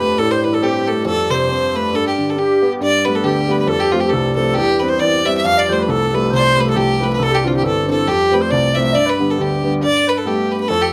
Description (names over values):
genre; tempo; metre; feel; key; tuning
celtic folk, Celtic polka; 137 BPM; 2/4; swing 56% on 8ths; G mixolydian; A4 = 439 Hz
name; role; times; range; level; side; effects
clear fiddle; melody; 0.0-10.9 s; F4 to F5; -21 LUFS; equal; none
wooden flute; second line; 0.0-10.9 s; F4 to F5; -23 LUFS; equal; none
warm grand piano; accompaniment; 0.0-10.9 s; G1 to D4; -21 LUFS; equal; none
pedal harmonium; drone; 0.0-9.9 s; G2 to G3; -26 LUFS; equal; none
room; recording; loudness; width
moderate studio ambience, RT60 0.5 s; none; -16 LUFS; mono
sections
0.0-2.8 A section; 2.8-9.8 B section; 9.8-10.9 B section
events
none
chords
0.2 Am; 1.1 F; 1.9 G; 2.8 Gadd9; 3.7 F; 4.6 C/E; 5.4 Fadd9; 7.2 Cadd9; 8.1 F; 8.9 G; 9.8 Gadd9